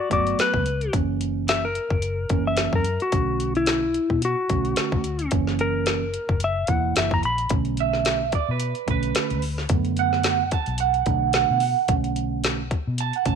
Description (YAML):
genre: straight-eighth soul blues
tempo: 109 BPM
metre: 4/4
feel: swing 56% on 16ths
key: B minor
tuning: A4 = 440 Hz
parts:
  - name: clean lap steel guitar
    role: melody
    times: 0.0-7.5 s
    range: E4 to B5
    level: -24 LUFS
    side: left 3 dB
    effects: none
  - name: mellow tine electric piano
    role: accompaniment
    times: 0.1-13.4 s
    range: D3 to E4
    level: -28 LUFS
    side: right 11 dB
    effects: none
  - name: vintage muted fingered electric bass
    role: bass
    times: 0.1-13.4 s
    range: E1 to B2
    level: -27 LUFS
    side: left 2 dB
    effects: none
  - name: drum and bass drum kit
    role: drums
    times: 0.1-13.4 s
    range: hi-hat, kick drum, snare drum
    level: -25 LUFS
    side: left 2 dB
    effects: none
  - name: electric guitar through a small old amp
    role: second line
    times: 7.8-13.4 s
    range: B4 to A5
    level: -24 LUFS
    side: right 12 dB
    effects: spring reverb
room: light reverb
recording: 1960s-style stereo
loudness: -20 LUFS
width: side -6 dB against mid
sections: 0.0-7.5 A section; 7.5-13.4 B section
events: clean electric guitar solo 7.5-13.4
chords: 0.0 Gmaj7; 0.9 F#7; 3.1 Bm7; 5.3 F#7; 7.5 Bm7